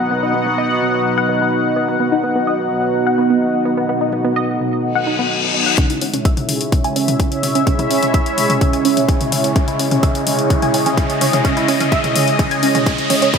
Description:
melodic techno; 127 BPM; 4/4; straight; C# minor; A4 = 439 Hz
sweeping resonant pad; sustained chords; 0.0-13.4 s; G#3 to F#5; -20 LUFS; left 2 dB; chorus, sidechain pumping
tight sequenced synth; arpeggios; 0.0-13.4 s; B3 to G#5; -21 LUFS; right 2 dB; chorus, phaser, sidechain pumping, digital delay
analog synth brass; stabs; 0.0-13.4 s; B2 to C#4; -22 LUFS; right 3 dB; chorus, sidechain pumping, digital delay
deep dark ambient pad; texture; 0.0-13.4 s; D#4 to G#5; -23 LUFS; equal; chorus, built-in reverb, sidechain pumping
reverse cymbal and riser; sound effects; 5.0-13.4 s; -23 LUFS; left 3 dB
electronic kick drum; drums; 5.8-13.4 s; -17 LUFS; equal; studio reverb
punchy analog drum machine; drums; 5.8-13.4 s; hi-hat, toms; -22 LUFS; left 3 dB; overdrive, studio reverb
wet lush hall reverb, RT60 1.7 s; bright 1980s-style digital production, high-pass filter; -14 LUFS; side -6 dB against mid
0.0-5.8 A section; 5.8-13.4 B section
reverse cymbal 5.0-5.8; build-up 5.8-13.4; drum fill 5.8-13.4; riser 5.8-13.4; filter sweep on analog polysynth 5.8-13.4
0.0 B; 5.8 C#m

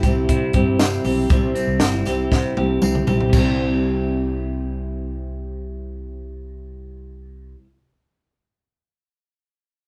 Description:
jangly indie pop; 118 BPM; 4/4; straight; C major; A4 = 438 Hz
fingerpicked steel-string acoustic guitar; accompaniment; 0.0-7.7 s; C3 to E4; -26 LUFS; equal
electric guitar through a small old amp; arpeggios; 0.0-7.6 s; G3 to G4; -27 LUFS; equal
fretless electric bass; bass; 0.0-7.5 s; G1 to C3; -28 LUFS; equal
compact cocktail drum kit; drums; 0.0-3.4 s; crash cymbal, hi-hat, kick drum, snare drum, toms; -22 LUFS; equal
tambourine; percussion; 0.0-3.6 s; -40 LUFS; equal
moderate large studio reverb, RT60 0.9 s; band playing live in one room; -20 LUFS; mono
0.0-3.3 A section; 3.3-7.4 B section
drum fill 2.3-3.3
0.0 C

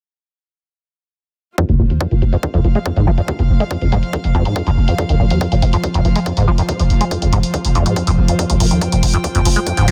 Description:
driving peak-time techno; 141 BPM; 4/4; straight; A4 = 440 Hz
acid bass, saw; riff; 1.6-9.9 s; Eb2 to Ab3; -20 LUFS; equal; ensemble chorus, sidechain pumping, tape echo
deep dark ambient pad; drone; 2.8-9.9 s; F3; -26 LUFS; equal; chorus, built-in reverb, sidechain pumping
electronic hi-hat; drums; 1.6-9.9 s; -28 LUFS; equal; sidechain pumping on hats, low-pass filter on hats
electronic kick drum; drums; 1.6-9.8 s; -25 LUFS; equal; high-pass filter on kick
dark studio string section; texture; 1.6-9.9 s; F4 to G5; -31 LUFS; equal; sidechain pumping
growling 808-style bass; bass; 1.7-9.9 s; F1; -17 LUFS; equal; overdrive, sidechain pumping, low-pass filter
digital ambience; dense, heavily limited modern master; -16 LUFS; mono
1.6-9.9 A section
fade-in on string section 1.6-9.9; filter sweep on acid bass 1.6-9.9
1.6 F5

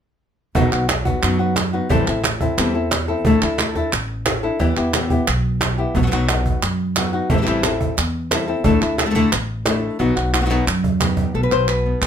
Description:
flamenco; 178 BPM; 4/4; straight; A4 = 440 Hz
flamenco guitar; melody; 0.5-12.1 s; B2 to C5; -20 LUFS; left 3 dB
upright bass; bass; 0.6-12.1 s; A1 to F#2; -22 LUFS; right 1 dB
cajon; percussion; 0.6-11.3 s; -23 LUFS; right 2 dB
palmas hand claps; percussion; 0.7-12.1 s; -23 LUFS; right 4 dB
light reverb; -16 LUFS; side -8 dB against mid
0.6-11.3 A section
drum fill 10.0-11.3
0.6 B; 1.9 Am7; 3.3 Dsus2; 4.6 Em; 6.0 B; 7.3 Am7; 8.7 Dsus2; 10.0 B

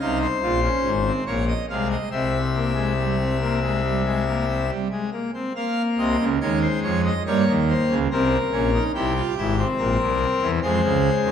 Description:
classical, baroque-style 3-part fugue for pipe organ; 71 BPM; 4/4; straight; F minor; A4 = 441 Hz
pipe organ, full organ; solo; 0.0-11.3 s; Ab1 to F5; -20 LUFS; left 1 dB
wet recital hall reverb, RT60 1.8 s; -20 LUFS; side -8 dB against mid
0.0-5.6 A section; 5.6-11.3 B section
0.0 Bbm; 2.1 C; 5.6 Fm; 7.2 Gdim; 8.9 C7; 10.6 Fm

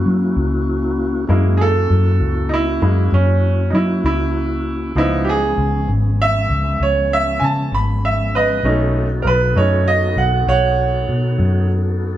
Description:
slow blues; 65 BPM (dotted quarters); 12/8; straight; F# mixolydian; A4 = 440 Hz
bright upright piano; accompaniment; 0.0-11.7 s; E#3 to B5; -18 LUFS; right 3 dB
mellow tonewheel organ; sustained chords; 0.0-12.2 s; E#3 to A4; -24 LUFS; left 2 dB; slow rotary speaker
vintage muted fingered electric bass; bass; 0.0-12.2 s; G#1 to F#3; -17 LUFS; equal
moderate large studio reverb, RT60 1.3 s; band playing live in one room; -14 LUFS; side -12 dB against mid
0.0-12.2 A section
upright piano solo 0.0-12.2
0.0 F#7; 5.0 C#7; 8.6 B7

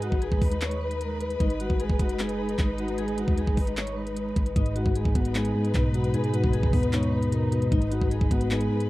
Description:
hip hop, trap; 152 BPM; 4/4; half-time; G# minor; A4 = 441 Hz
vibraphone with medium hard mallets; melody; 0.0-8.9 s; D#4 to C#6; -32 LUFS; left 1 dB; auto-pan, low-pass filter, ping-pong delay
dark symphonic string section; sustained chords; 0.0-8.9 s; G#3 to B4; -32 LUFS; equal
warm 808-style bass; bass; 0.0-8.7 s; F#1 to G#2; -32 LUFS; equal
trap drum kit; drums; 0.0-8.9 s; handclaps, hi-hat, kick drum; -26 LUFS; equal
mellow tine electric piano; accompaniment; 4.6-8.9 s; G#2 to B3; -25 LUFS; left 1 dB; lush chorus, low-pass filter
little or no reverb; rough home demo mix, vinyl crackle; -23 LUFS; side -18 dB against mid
0.0-8.9 A section
0.0 G#m

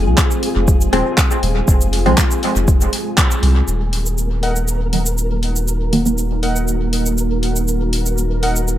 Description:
dub techno; 120 BPM; 4/4; straight; Eb dorian; A4 = 440 Hz
deep dark ambient pad; sustained chords; 0.0-8.8 s; Ab3 to Bb4; -23 LUFS; equal; chorus, built-in reverb, sidechain pumping
soft dub sub bass; bass; 0.0-8.8 s; Eb1 to C2; -18 LUFS; equal; sidechain pumping
flickering grainy texture; texture; 0.0-8.8 s; Ab3 to Bb4; -28 LUFS; equal; built-in reverb, sidechain pumping
deep house drum kit; drums; 0.2-8.8 s; cabasa, handclaps, hi-hat; -22 LUFS; equal; dub echo
electronic kick drum; drums; 0.2-3.3 s; -14 LUFS; equal
filtered dub chord stab; stabs; 0.9-6.2 s; Eb3 to C4; -20 LUFS; equal; chorus, phaser, sidechain pumping, dub echo
warbly lo-fi synth keys; riff; 4.4-8.5 s; Bb4 to Gb5; -26 LUFS; left 1 dB; chorus, sidechain pumping, dub echo
light reverb; echo-heavy mix; -14 LUFS; side -12 dB against mid
0.0-3.7 A section; 3.7-8.8 B section
band accent 3.2
0.0 Fm; 3.7 Ebm

